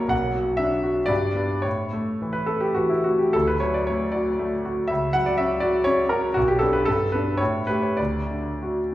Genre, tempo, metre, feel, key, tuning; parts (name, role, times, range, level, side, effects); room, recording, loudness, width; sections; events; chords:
classical, romantic character piece for solo piano; 94-128 BPM; 3/4; rubato; D major; A4 = 441 Hz
clear concert grand piano; solo; 0.0-8.9 s; B1 to F#5; -20 LUFS; equal
wet recital hall reverb, RT60 1.7 s; heard from further back in the room; -20 LUFS; side -14 dB against mid
0.0-8.9 A section
0.1 Bm; 1.1 G; 1.7 A; 3.3 D; 4.9 F#5/C#; 6.4 Bm; 6.9 G; 7.4 A7; 8.0 D